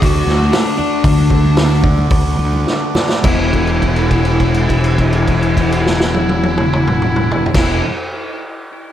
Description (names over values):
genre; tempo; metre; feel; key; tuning
psychedelic rock; 103-119 BPM; 4/4; straight; E mixolydian; A4 = 441 Hz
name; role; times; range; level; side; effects
fuzz lead guitar; melody; 0.0-7.8 s; D4 to F#4; -20 LUFS; left 2 dB; distortion, tape echo
combo organ; sustained chords; 0.0-7.8 s; A3 to D6; -24 LUFS; right 3 dB; spring reverb
thick fuzz guitar; riff; 0.0-7.8 s; E2 to D5; -18 LUFS; left 1 dB; distortion, phaser
fuzz fingered electric bass; bass; 0.0-7.8 s; E1 to D2; -18 LUFS; equal; overdrive
vintage drum kit; drums; 0.0-7.7 s; crash cymbal, hi-hat, kick drum, snare drum, toms; -17 LUFS; equal; none
congas; percussion; 0.3-3.5 s; none; -27 LUFS; right 3 dB; none
room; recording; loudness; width
light reverb, studio reverb; none; -12 LUFS; side -11 dB against mid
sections
0.0-3.2 A section; 3.2-7.9 B section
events
slowing down 0.0-3.2; drum fill 2.7-3.2; held note 3.2-7.5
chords
0.0 D; 3.2 Eadd9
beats
0.02 0.53 | 1.04 1.57 2.11 2.66 | 3.24 3.82 4.40 4.98 | 5.57 6.15 6.73 7.31